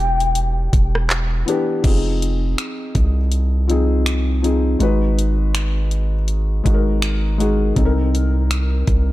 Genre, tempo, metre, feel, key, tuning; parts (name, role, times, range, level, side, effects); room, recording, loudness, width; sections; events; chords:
contemporary R&B; 81 BPM; 4/4; swing 58% on 16ths; F minor; A4 = 440 Hz
soft octave-layered synth lead; melody; 0.0-1.1 s; G5; -24 LUFS; left 4 dB; chorus, phaser, tape echo
felt-muted upright piano; accompaniment; 0.0-9.1 s; C3 to Cb5; -22 LUFS; left 2 dB
long sustained 808-style bass; bass; 0.0-9.1 s; E1 to C2; -18 LUFS; equal
trap drum kit; drums; 0.2-9.1 s; crash cymbal, finger snaps, handclaps, hi-hat, kick drum, rim click; -21 LUFS; equal
little or no reverb; dark, warm production; -16 LUFS; side -16 dB against mid
0.0-1.8 A section; 1.8-9.1 B section
0.0 Em7; 1.8 Fm7; 4.8 Abm7; 7.8 Cm7